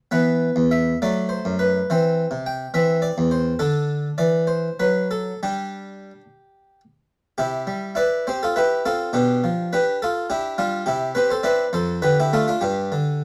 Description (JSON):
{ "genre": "classical, baroque-style suite movement for harpsichord", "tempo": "61-72 BPM (dotted quarters)", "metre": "6/8", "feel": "rubato", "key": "G major, C major from 7.4 s", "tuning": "A4 = 440 Hz", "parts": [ { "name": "harpsichord", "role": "solo", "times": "0.1-13.2 s", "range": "E2 to G5", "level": "-22 LUFS", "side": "equal", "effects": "none" } ], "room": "light reverb", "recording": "dark, warm production", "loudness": "-22 LUFS", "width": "mono", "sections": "0.0-7.4 A section; 7.4-13.2 A section", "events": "none", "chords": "0.1 E5; 1.0 F#dim; 1.9 C/E; 2.7 Cadd9/E; 3.6 D; 5.4 G5; 7.4 C; 9.1 G7/B; 10.8 C; 11.7 Dm/F; 12.6 G5", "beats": "| 0.11 1.01 | 1.88 2.73 | 3.59 4.49 | 5.43 6.40 | 7.36 8.27 | 9.14 9.99 | 10.84 11.72 | 12.61" }